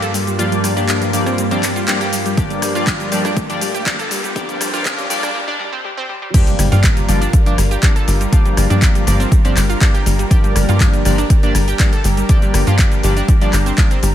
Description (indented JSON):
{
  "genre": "progressive house",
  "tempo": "121 BPM",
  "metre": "4/4",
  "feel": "straight",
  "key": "G minor",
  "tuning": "A4 = 439 Hz",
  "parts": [
    { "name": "lush unison pad", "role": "sustained chords", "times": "0.0-14.1 s", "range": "G2 to Bb4", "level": "-24 LUFS", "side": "equal", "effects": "chorus, phaser, sidechain pumping" },
    { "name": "analog pluck", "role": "arpeggios", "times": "0.0-14.1 s", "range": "G3 to A4", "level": "-23 LUFS", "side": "equal", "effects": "chorus, sidechain pumping, ping-pong delay" },
    { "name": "house drum kit", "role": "drums", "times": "0.0-14.1 s", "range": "crash cymbal, handclaps, hi-hat, rim click, shaker", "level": "-22 LUFS", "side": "left 1 dB", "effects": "none" },
    { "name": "riser and impact", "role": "sound effects", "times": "1.1-8.3 s", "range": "none", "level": "-29 LUFS", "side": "right 1 dB", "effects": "none" },
    { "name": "chorused polysynth", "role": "stabs", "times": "0.4-13.9 s", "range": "G2 to D5", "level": "-22 LUFS", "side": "left 2 dB", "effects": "sidechain pumping, ping-pong delay" },
    { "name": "electronic kick drum", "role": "drums", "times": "2.4-13.9 s", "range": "none", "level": "-14 LUFS", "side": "equal", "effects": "overdrive" },
    { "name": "tight sequencer bass", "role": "bass", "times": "6.6-14.1 s", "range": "G1 to G2", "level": "-15 LUFS", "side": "equal", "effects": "sidechain pumping" }
  ],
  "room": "light reverb, digital ambience",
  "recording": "high-pass filter",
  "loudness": "-13 LUFS",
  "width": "side -11 dB against mid",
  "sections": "0.0-6.3 A section; 6.3-14.1 B section",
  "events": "build-up 0.0-6.3; filter sweep 0.0-6.3; break 5.3-6.3; drop 6.3-14.1; impact 6.3-8.3",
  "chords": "0.0 Gm7",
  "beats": "| 0.39 0.89 1.38 1.88 | 2.38 2.87 3.37 3.86 | 4.36 4.85 5.35 5.85 | 6.34 6.84 7.33 7.83 | 8.32 8.82 9.32 9.81 | 10.31 10.80 11.30 11.80 | 12.29 12.79 13.28 13.78"
}